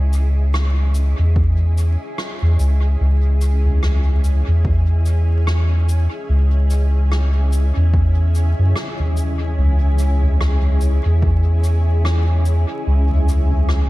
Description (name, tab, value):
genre	ambient dub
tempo	73 BPM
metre	4/4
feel	swing 58% on 16ths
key	C# minor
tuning	A4 = 439 Hz
part	granular cloud pad	sustained chords	0.0-13.9 s	C#4 to D#5	-28 LUFS	equal	built-in reverb
part	soft dub sub bass	bass	0.0-13.9 s	C#2 to F#2	-14 LUFS	equal	none
part	soft-mallet drum kit	drums	0.1-13.9 s	cabasa, rim click, toms	-25 LUFS	equal	dub echo
part	electronic kick drum	drums	1.4-11.4 s	none	-21 LUFS	equal	none
room	small room ambience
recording	vinyl crackle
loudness	-15 LUFS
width	side -18 dB against mid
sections	0.0-13.9 A section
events	fade-in on ambient pad 0.0-13.9; kick drops out 12.9-13.9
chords	0.0 C#madd9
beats	0.54 1.36 2.18 | 3.00 3.83 4.65 5.47 | 6.29 7.11 7.94 8.76 | 9.58 10.40 11.22 12.05 | 12.87 13.69